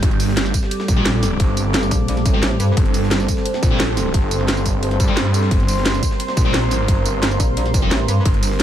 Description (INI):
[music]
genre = dark technical drum and bass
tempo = 175 BPM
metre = 4/4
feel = straight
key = G minor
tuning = A4 = 440 Hz
[part]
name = dark analog pad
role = sustained chords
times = 0.0-8.6 s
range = G3 to Bb4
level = -25 LUFS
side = right 2 dB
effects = chorus, sidechain pumping
[part]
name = snarling distorted saw bass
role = bass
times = 0.0-8.6 s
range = G1 to G2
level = -20 LUFS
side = equal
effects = distortion, tube saturation
[part]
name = breakbeat sampler-style drum kit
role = drums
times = 0.0-8.6 s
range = hi-hat, ride cymbal, snare drum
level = -32 LUFS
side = right 1 dB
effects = none
[part]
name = drum and bass drum kit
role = drums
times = 0.0-8.6 s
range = hi-hat, snare drum, tambourine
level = -22 LUFS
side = equal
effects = none
[part]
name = electronic kick drum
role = drums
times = 0.0-8.3 s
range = none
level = -18 LUFS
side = equal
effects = none
[part]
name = warbly tape-like pad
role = texture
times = 0.0-8.6 s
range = G3 to G6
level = -25 LUFS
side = right 1 dB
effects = chorus, built-in reverb, sidechain pumping
[part]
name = sludgy distorted guitar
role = stabs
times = 1.0-7.9 s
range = G3 to G4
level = -29 LUFS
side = left 4 dB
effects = overdrive, ping-pong delay
[part]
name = metallic wobble bass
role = bass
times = 1.9-2.8, 7.4-8.2 s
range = A1 to G2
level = -19 LUFS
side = equal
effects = chorus, tube saturation
[sound]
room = light reverb, digital ambience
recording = none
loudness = -15 LUFS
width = side -11 dB against mid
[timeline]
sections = 0.0-8.6 A section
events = none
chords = 0.0 G5